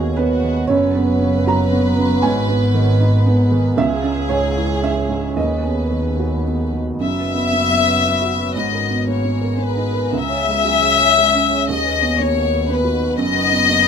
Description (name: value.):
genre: neoclassical piano and strings.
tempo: 109-120 BPM.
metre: 3/4.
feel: rubato.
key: unclear.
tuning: A4 = 440 Hz.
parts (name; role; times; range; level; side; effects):
warm chamber violin section; melody; 0.0-13.9 s; F#4 to E5; -19 LUFS; left 5 dB; none.
felt-muted upright piano; accompaniment; 0.0-13.9 s; C#2 to A#5; -19 LUFS; right 4 dB; none.
deep dark ambient pad; sustained chords; 0.0-13.9 s; B3 to A#5; -29 LUFS; equal; chorus, built-in reverb.
dark double bass; bass; 0.0-13.9 s; F#1 to D#2; -21 LUFS; equal; none.
room: moderate studio reverb, RT60 0.5 s.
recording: minimal, uncompressed stereo recording.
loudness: -15 LUFS.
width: side -7 dB against mid.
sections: 0.0-7.0 A section; 7.0-13.9 B section.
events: none.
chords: 0.0 B/D#; 0.7 F#sus4; 2.2 G#madd9; 3.8 C#m; 5.4 B/D#; 7.0 F#sus4; 8.6 G#madd9; 10.1 C#m; 11.7 B/D#; 13.2 F#sus4.